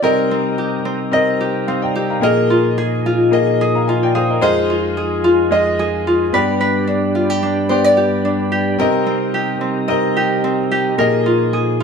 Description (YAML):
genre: acoustic pop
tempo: 110 BPM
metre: 4/4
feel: swing 55% on 16ths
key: C minor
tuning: A4 = 440 Hz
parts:
  - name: bright grand piano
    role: accompaniment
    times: 0.0-11.8 s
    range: Ab3 to Bb5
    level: -18 LUFS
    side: left 3 dB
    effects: none
  - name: tenor ukulele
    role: accompaniment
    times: 0.0-11.8 s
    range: C4 to Eb5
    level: -18 LUFS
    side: right 1 dB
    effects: none
  - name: tonewheel organ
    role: sustained chords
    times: 0.0-11.8 s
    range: F2 to B4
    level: -20 LUFS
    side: equal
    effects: chorus vibrato, slow rotary speaker
room: moderate large studio reverb, RT60 1.0 s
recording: band playing live in one room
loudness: -14 LUFS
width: side -6 dB against mid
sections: 0.0-11.8 A section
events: none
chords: 0.0 Cm7; 2.2 Bb7sus4; 4.4 Fm7; 6.3 G; 8.8 Cm7; 11.0 Bb7sus4